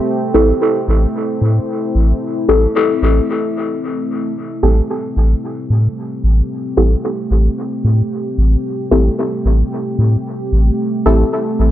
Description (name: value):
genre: dub techno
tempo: 112 BPM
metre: 4/4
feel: straight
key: A minor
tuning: A4 = 437 Hz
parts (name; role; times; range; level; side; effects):
- deep dark ambient pad; sustained chords; 0.0-11.7 s; A3 to G4; -20 LUFS; equal; chorus, built-in reverb
- deep mellow chord stab; stabs; 0.3-11.2 s; C4 to A4; -17 LUFS; left 1 dB; chorus, phaser, dub echo
- warm sub bass; bass; 0.3-11.7 s; A1 to A2; -12 LUFS; equal; none
room: light reverb, digital ambience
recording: dry, gritty hardware recording, nothing above 7.6 kHz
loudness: -13 LUFS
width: side -12 dB against mid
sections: 0.0-4.4 A section; 4.4-11.7 A section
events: filter sweep on synth stab 0.0-4.4; break 3.3-4.4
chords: 0.0 Am7